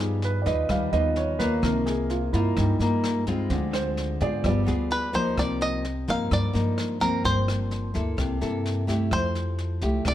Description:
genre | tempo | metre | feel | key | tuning
bossa nova | 128 BPM | 4/4 | straight | C minor | A4 = 440 Hz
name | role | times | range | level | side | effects
nylon-string guitar | accompaniment | 0.0-10.1 s | G2 to B4 | -27 LUFS | left 2 dB | none
warm concert grand piano | accompaniment | 0.0-5.4 s | Eb3 to F5 | -28 LUFS | right 3 dB | none
upright bass | bass | 0.0-10.1 s | G1 to Ab2 | -28 LUFS | equal | none
jazz brush drum kit | drums | 0.2-10.1 s | kick drum, rim click, snare drum | -33 LUFS | equal | none
bluegrass banjo | melody | 4.9-10.1 s | Bb4 to F5 | -28 LUFS | equal | none
room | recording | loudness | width
light reverb | none | -23 LUFS | side -12 dB against mid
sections
0.0-5.4 A section; 5.4-10.1 B section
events
grand piano solo 0.0-5.4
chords
0.0 G7alt; 1.6 Cm7; 3.5 Dm7b5; 4.4 G7b9; 5.4 Cm11; 7.2 Gm11; 8.2 C6; 9.1 Fmaj9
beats
0.22 0.69 1.16 | 1.63 2.10 2.56 3.03 | 3.50 3.97 4.44 4.91 | 5.37 5.84 6.31 6.78 | 7.25 7.71 8.18 8.65 | 9.12 9.59 10.05

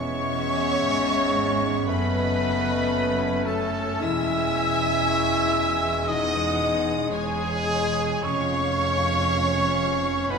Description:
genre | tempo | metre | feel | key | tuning
classical, slow romantic movement for symphony orchestra | 58 BPM | 4/4 | rubato | C# minor | A4 = 441 Hz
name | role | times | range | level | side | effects
warm symphonic violin section | melody | 0.0-10.4 s | G#5 to E6 | -32 LUFS | left 2 dB | none
silver concert flute | second line | 0.0-10.4 s | G#5 to E6 | -32 LUFS | left 1 dB | none
warm clarinet | second line | 0.0-10.4 s | B3 to C#4 | -35 LUFS | right 2 dB | none
warm oboe | second line | 0.0-10.4 s | G#4 to E5 | -32 LUFS | right 2 dB | none
warm symphonic violin section | second line | 0.0-10.4 s | C#5 to G#5 | -34 LUFS | left 2 dB | none
clear symphonic viola section | accompaniment | 0.0-10.4 s | G#4 to E5 | -33 LUFS | equal | none
warm bassoon | accompaniment | 0.0-10.4 s | E3 to A3 | -33 LUFS | left 1 dB | none
mellow French horn section | sustained chords | 0.0-10.4 s | G#3 to E4 | -28 LUFS | left 2 dB | none
concert harp | arpeggios | 0.0-10.4 s | E2 to C#6 | -36 LUFS | left 7 dB | none
warm trumpet | stabs | 0.0-10.4 s | G#4 to E5 | -29 LUFS | right 1 dB | none
rich symphonic cello section | bass | 0.0-10.4 s | E2 to G#2 | -32 LUFS | right 2 dB | none
warm symphonic double bass section | bass | 0.0-10.4 s | E1 to G#1 | -32 LUFS | right 5 dB | none
room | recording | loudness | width
wet scoring stage reverb, RT60 2.1 s | minimal, uncompressed stereo recording | -21 LUFS | side -5 dB against mid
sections
0.0-10.4 A section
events
none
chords
0.0 E; 1.9 F#m; 4.0 C#m/E; 8.2 C#7/E#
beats
0.85 1.89 2.92 | 4.03 5.07 6.08 7.11 | 8.24 9.29 10.31

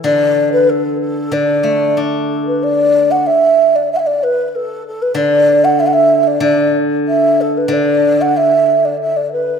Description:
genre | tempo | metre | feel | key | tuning
chinese traditional, Chinese chamber ensemble | 94 BPM | 2/4 | rubato | D gong mode | A4 = 440 Hz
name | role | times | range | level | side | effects
breathy mellow low xiao | melody | 0.0-9.6 s | A4 to F#5 | -12 LUFS | equal | none
steel-string zither | accompaniment | 0.0-9.6 s | D3 to D4 | -17 LUFS | equal | none
room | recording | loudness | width
wet recital hall reverb, RT60 1.6 s | minimal, uncompressed stereo recording | -11 LUFS | side -6 dB against mid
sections
0.0-2.6 A section; 2.6-9.6 B section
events
none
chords
none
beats
| 0.05 0.69 | 1.32 1.97 | 2.62 3.27 | 3.91 4.54 | 5.17 5.79 | 6.42 7.06 | 7.71 8.35 | 8.98

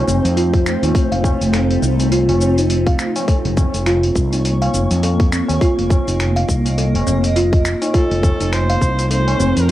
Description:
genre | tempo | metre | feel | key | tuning
organic downtempo | 103 BPM | 4/4 | swing 58% on 16ths | unclear | A4 = 441 Hz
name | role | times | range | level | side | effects
granular cloud pad | sustained chords | 0.0-9.7 s | A3 to Db6 | -21 LUFS | equal | built-in reverb, sidechain pumping, cassette tape
kalimba | arpeggios | 0.0-9.7 s | C4 to F5 | -21 LUFS | right 1 dB | cassette tape, tape echo
fretless electric bass | bass | 0.1-9.7 s | F1 to F2 | -18 LUFS | equal | sidechain pumping
dusty soul sampler-style drum kit | drums | 0.1-9.7 s | cabasa, finger snaps, hi-hat | -26 LUFS | left 1 dB | cassette tape
electronic kick drum | drums | 0.5-9.0 s | none | -16 LUFS | equal | overdrive, cassette tape
tabla | percussion | 0.8-9.4 s | none | -27 LUFS | left 1 dB | none
rich kamancheh | melody | 7.9-9.7 s | A4 to C5 | -22 LUFS | right 1 dB | cassette tape
room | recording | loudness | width
light reverb | home recording on cassette | -14 LUFS | side -14 dB against mid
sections
0.0-9.7 A section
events
none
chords
0.0 F7; 3.3 Dbmaj13/F; 7.9 F7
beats
0.37 | 0.95 1.53 2.12 2.70 | 3.28 3.87 4.45 5.03 | 5.61 6.20 6.78 7.36 | 7.94 8.53 9.11 9.69

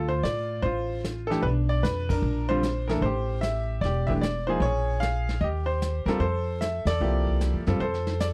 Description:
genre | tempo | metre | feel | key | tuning
jazz piano trio | 151 BPM | 4/4 | swing 65% on 8ths | F major | A4 = 440 Hz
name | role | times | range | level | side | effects
clear baby grand piano | melody | 0.0-8.3 s | D3 to F5 | -30 LUFS | equal | none
upright bass | bass | 0.0-8.3 s | E1 to A2 | -30 LUFS | equal | none
vintage brush drum kit | drums | 0.2-8.3 s | brushed snare drum, hi-hat, kick drum, ride cymbal, snare drum | -34 LUFS | equal | none
room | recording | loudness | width
little or no reverb | dry, close 1970s-style studio recording | -27 LUFS | mono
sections
0.0-8.3 A section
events
band accent 2.0, 6.8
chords
0.0 Dm7; 1.4 Bdim; 2.2 Bb; 3.0 Am7; 4.6 Bbm7; 5.4 Eb; 6.2 Fmaj9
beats
0.25 0.65 1.04 | 1.44 1.84 2.24 2.63 | 3.03 3.43 3.83 4.23 | 4.62 5.02 5.42 5.82 | 6.21 6.61 7.01 7.41 | 7.81 8.20

